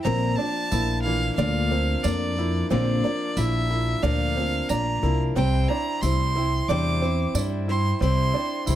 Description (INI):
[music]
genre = indie folk with a building arrangement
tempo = 90 BPM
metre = 4/4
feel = straight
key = unclear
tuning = A4 = 440 Hz
[part]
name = clear fiddle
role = melody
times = 0.0-8.8 s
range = D5 to D6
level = -28 LUFS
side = right 1 dB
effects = none
[part]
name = picked steel-string acoustic guitar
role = accompaniment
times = 0.0-8.8 s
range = Bb2 to C5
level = -29 LUFS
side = left 7 dB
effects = none
[part]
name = clear upright piano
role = arpeggios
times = 0.0-8.8 s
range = E3 to E4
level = -28 LUFS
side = right 7 dB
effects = none
[part]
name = upright bass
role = bass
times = 0.1-8.8 s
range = Bb1 to G2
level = -24 LUFS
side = equal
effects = none
[part]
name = tambourine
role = percussion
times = 0.7-8.8 s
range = none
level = -36 LUFS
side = right 6 dB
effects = none
[sound]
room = studio reverb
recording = dark, warm production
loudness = -21 LUFS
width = side -12 dB against mid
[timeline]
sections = 0.0-8.8 A section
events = none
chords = 0.1 Bb; 5.4 C